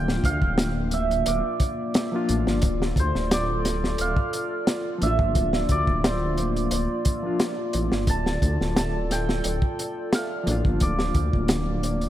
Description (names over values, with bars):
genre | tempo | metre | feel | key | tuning
trip hop | 88 BPM | 4/4 | straight | D minor | A4 = 442 Hz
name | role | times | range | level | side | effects
santur | melody | 0.0-12.1 s | C5 to A5 | -29 LUFS | right 3 dB | dub echo
reed electric piano | accompaniment | 0.0-12.1 s | F3 to F4 | -30 LUFS | left 2 dB | overdrive, medium tremolo, vintage 12-bit sampler grit, tape echo
dark analog pad | sustained chords | 0.0-12.1 s | Bb3 to D5 | -30 LUFS | equal | chorus
dark detuned saw bass | bass | 0.0-12.1 s | D1 to D2 | -26 LUFS | equal | none
crunchy breakbeat drum kit | drums | 0.1-12.1 s | hi-hat, kick drum, snare drum | -25 LUFS | equal | none
room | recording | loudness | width
moderate lush hall reverb, RT60 2.4 s | dreamy mix soaked in reverb | -22 LUFS | side -12 dB against mid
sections
0.0-12.1 A section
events
none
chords
0.0 Dm